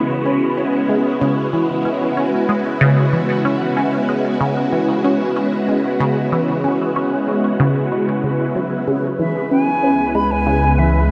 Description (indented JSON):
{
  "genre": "ambient, sequencer-driven space music",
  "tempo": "94 BPM",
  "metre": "4/4",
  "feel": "straight",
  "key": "C# minor",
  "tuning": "A4 = 442 Hz",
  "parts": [
    { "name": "phased string machine", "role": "sustained chords", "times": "0.0-11.1 s", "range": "G#3 to B4", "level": "-22 LUFS", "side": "equal", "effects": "ensemble chorus, phaser" },
    { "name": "resonant blip pluck", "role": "riff", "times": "0.0-11.1 s", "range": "C#3 to C#4", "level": "-21 LUFS", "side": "equal", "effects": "phaser, tape echo" },
    { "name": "wind-like tuned noise texture", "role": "texture", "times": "0.0-11.1 s", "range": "B4", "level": "-30 LUFS", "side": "equal", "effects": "built-in reverb" },
    { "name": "analog drone", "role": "bass", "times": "10.1-11.1 s", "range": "C#2", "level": "-21 LUFS", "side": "equal", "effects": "chorus" },
    { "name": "hollow concert flute", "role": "melody", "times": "9.2-11.1 s", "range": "E5 to B5", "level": "-22 LUFS", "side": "equal", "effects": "none" }
  ],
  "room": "wet cathedral reverb, RT60 5.3 s",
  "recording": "in a vast, echoing space",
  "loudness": "-18 LUFS",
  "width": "mono",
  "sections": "0.0-8.9 A section; 8.9-11.1 A section",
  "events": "none",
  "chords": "0.0 C#m7"
}